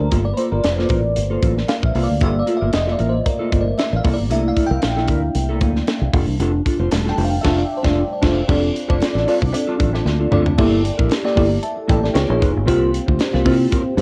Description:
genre	polished 1980s jazz-funk pop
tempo	115 BPM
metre	4/4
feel	swing 54% on 16ths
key	G dorian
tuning	A4 = 439 Hz
part	bell-like FM electric piano	accompaniment	0.0-14.0 s	G3 to A5	-23 LUFS	equal	phaser, analog chorus, plate reverb
part	mellow electric guitar	riff	0.0-14.0 s	Bb3 to C5	-25 LUFS	equal	lush chorus
part	fingered electric bass	bass	0.0-14.0 s	E1 to C3	-22 LUFS	equal	none
part	tight funk drum kit	drums	0.1-14.0 s	crash cymbal, hi-hat, kick drum, snare drum, toms	-24 LUFS	equal	cassette tape
part	congas	percussion	0.1-14.0 s	none	-37 LUFS	equal	none
room	moderate small room reverb, RT60 0.5 s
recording	home recording on cassette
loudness	-18 LUFS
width	mono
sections	0.0-8.5 A section; 8.5-10.6 B section; 10.6-14.0 C section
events	FM electric piano solo 0.0-8.5; band accent 7.4-8.5; drum fill 10.1-10.6; FM electric piano fill 13.7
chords	0.1 Gm9; 4.0 C13; 6.1 F6; 10.6 Gm69; 12.2 C#9; 12.7 C7sus4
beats	| 0.12 0.64 1.17 1.69 | 2.21 2.74 3.26 3.78 | 4.31 4.83 5.35 5.88 | 6.40 6.92 7.45 7.97 | 8.49 9.02 9.54 10.06 | 10.59 11.11 11.63 12.15 | 12.68 13.20 13.72

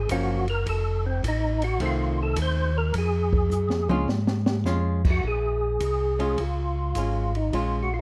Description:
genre	soul jazz organ trio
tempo	105 BPM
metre	4/4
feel	swing 68% on 8ths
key	Bb minor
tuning	A4 = 440 Hz
part	percussive tonewheel organ	melody	0.0-8.0 s	C4 to C5	-30 LUFS	equal	slow rotary speaker, chorus vibrato, plate reverb
part	mellow tonewheel organ	bass	0.0-8.0 s	F1 to Ab2	-28 LUFS	equal	slow rotary speaker
part	archtop guitar, miked and amplified	accompaniment	0.1-7.9 s	Eb3 to F4	-32 LUFS	equal	none
part	open jazz drum kit	drums	0.1-7.7 s	crash cymbal, hi-hat, kick drum, ride cymbal, snare drum, toms	-32 LUFS	equal	none
room	light reverb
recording	none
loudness	-25 LUFS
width	mono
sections	0.0-5.2 A section; 5.2-8.0 B section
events	tonewheel organ solo 0.0-5.2; drum fill 3.5-4.7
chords	0.0 Gbmaj7; 0.7 F7; 3.0 Dbadd11; 5.2 Bbm7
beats	0.09 | 0.66 1.24 1.81 2.38 | 2.95 3.52 4.09 4.67 | 5.24 5.81 6.38 6.96 | 7.53

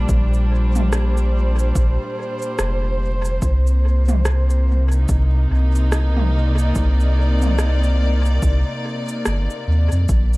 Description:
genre	ambient dub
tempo	72 BPM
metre	4/4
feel	swing 60% on 16ths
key	C minor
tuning	A4 = 442 Hz
part	dark studio string section	sustained chords	0.0-10.4 s	Bb2 to D5	-24 LUFS	equal	none
part	soft dub sub bass	bass	0.0-10.4 s	F1 to F2	-16 LUFS	equal	none
part	electronic kick drum	drums	0.1-10.3 s	none	-21 LUFS	equal	none
part	organic electronic drum kit	drums	0.1-10.4 s	cabasa, rim click, toms	-27 LUFS	right 1 dB	dub echo
room	little or no reverb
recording	echo-heavy mix, vinyl crackle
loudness	-16 LUFS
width	side -22 dB against mid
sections	0.0-10.4 A section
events	none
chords	0.0 Bb69; 3.4 Cm9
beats	| 0.09 0.92 1.76 2.59 | 3.42 4.26 5.09 5.92 | 6.76 7.59 8.42 9.26 | 10.09

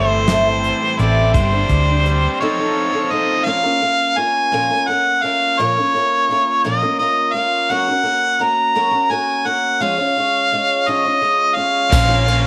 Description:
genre	folk rock and heartland rock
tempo	57 BPM (dotted quarters)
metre	6/8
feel	straight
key	Bb minor from 3.5 s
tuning	A4 = 439 Hz
part	warm harmonica	melody	0.0-12.5 s	C5 to Bb5	-19 LUFS	equal	none
part	picked twelve-string acoustic guitar	accompaniment	0.0-12.5 s	A2 to Db5	-24 LUFS	equal	none
part	overdriven tonewheel organ	sustained chords	0.0-3.5, 11.9-12.5 s	C4 to C5	-33 LUFS	equal	none
part	raw garage guitar	riff	0.0-3.5, 11.9-12.5 s	A2 to A4	-27 LUFS	equal	overdrive, spring reverb
part	hollow-body short-scale fingered electric bass	bass	0.0-2.3, 11.9-12.5 s	G1 to D2	-20 LUFS	equal	none
part	soft brush drum kit	drums	0.3-2.2, 11.9-12.4 s	crash cymbal, hi-hat, kick drum, ride cymbal, snare drum	-22 LUFS	equal	none
part	tambourine	percussion	11.9-12.1 s	none	-34 LUFS	equal	none
room	light reverb, small room ambience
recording	none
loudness	-17 LUFS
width	mono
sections	0.0-3.5 A section; 3.5-12.5 B section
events	none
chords	0.0 Am7; 1.3 Gsus4; 2.4 F7; 3.5 Bbm; 7.7 Gb; 9.8 Db/F; 11.9 Bbm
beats	0.28 | 1.35 2.41 | 3.47 4.53 | 5.59 6.65 | 7.71 8.76 | 9.82 10.87 | 11.92

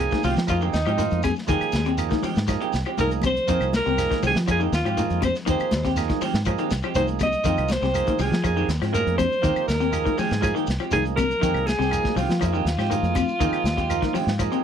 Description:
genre	afrobeat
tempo	121 BPM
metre	4/4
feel	straight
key	F minor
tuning	A4 = 440 Hz
part	warm alto saxophone	melody	0.0-14.6 s	Eb4 to Eb5	-25 LUFS	right 1 dB	none
part	percussive tonewheel organ	accompaniment	0.0-14.6 s	F3 to Ab4	-28 LUFS	right 20 dB	overdrive
part	electric guitar through a small old amp	arpeggios	0.0-14.6 s	C3 to F3	-28 LUFS	left 10 dB	lush chorus
part	semi-hollow electric guitar	stabs	0.0-14.6 s	Eb3 to G4	-31 LUFS	right 12 dB	wide subtle chorus
part	fingered electric bass	bass	0.0-14.5 s	C2 to F3	-26 LUFS	equal	none
part	crunchy breakbeat drum kit	drums	0.0-14.6 s	hi-hat, kick drum, snare drum	-28 LUFS	equal	none
part	congas	percussion	0.0-14.5 s	none	-32 LUFS	left 2 dB	none
part	shekere	percussion	0.1-14.6 s	none	-35 LUFS	left 2 dB	none
part	claves	percussion	0.5-14.5 s	none	-36 LUFS	left 15 dB	none
room	little or no reverb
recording	dry, close 1970s-style studio recording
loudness	-20 LUFS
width	side -8 dB against mid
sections	0.0-14.6 A section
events	none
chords	0.0 Fm9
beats	0.49 0.99 | 1.49 1.99 2.48 2.98 | 3.48 3.98 4.47 4.97 | 5.47 5.96 6.46 6.96 | 7.45 7.95 8.45 8.94 | 9.44 9.93 10.43 10.92 | 11.42 11.91 12.41 12.91 | 13.40 13.90 14.39

